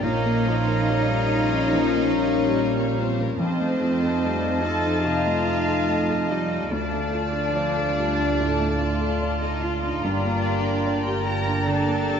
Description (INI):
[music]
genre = cinematic, emotional film score for orchestra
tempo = 72 BPM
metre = 4/4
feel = rubato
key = G minor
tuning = A4 = 435 Hz
[part]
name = dark studio violin section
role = melody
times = 0.0-12.2 s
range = Bb4 to Bb5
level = -33 LUFS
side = left 4 dB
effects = none
[part]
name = dark studio violin section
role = second line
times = 0.0-12.2 s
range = Db5 to Bb5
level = -32 LUFS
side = left 4 dB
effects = none
[part]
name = mellow cor anglais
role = second line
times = 0.0-12.2 s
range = F5 to G5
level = -34 LUFS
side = right 2 dB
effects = none
[part]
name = silver concert flute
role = second line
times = 0.0-12.2 s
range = A5 to Bb5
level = -34 LUFS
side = left 2 dB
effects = none
[part]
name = warm clarinet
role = second line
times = 0.0-12.2 s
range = Db5 to Eb5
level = -33 LUFS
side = left 2 dB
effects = none
[part]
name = felt-muted upright piano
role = accompaniment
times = 0.0-12.2 s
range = D2 to Eb5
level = -28 LUFS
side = left 1 dB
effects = none
[part]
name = warm studio viola section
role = accompaniment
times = 0.0-12.2 s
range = F3 to F4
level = -31 LUFS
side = right 1 dB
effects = none
[part]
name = dark French horn section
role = sustained chords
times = 0.0-12.2 s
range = A3 to F4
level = -29 LUFS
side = left 6 dB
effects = none
[part]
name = dark studio double bass section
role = bass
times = 0.0-12.2 s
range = G1 to F2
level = -28 LUFS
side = right 3 dB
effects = none
[part]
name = warm studio cello section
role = bass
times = 0.0-12.2 s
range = Bb3 to Bb4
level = -28 LUFS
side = right 4 dB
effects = none
[sound]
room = moderate scoring stage reverb, RT60 1.6 s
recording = nothing above 7.7 kHz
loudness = -20 LUFS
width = side -7 dB against mid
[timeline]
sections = 0.0-12.2 A section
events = none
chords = 0.0 Bbm; 3.4 F7; 6.7 Dm; 10.0 Gm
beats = | 0.03 0.90 1.74 2.57 | 3.40 4.22 5.05 5.89 | 6.71 7.54 8.38 9.20 | 10.03 10.86 11.66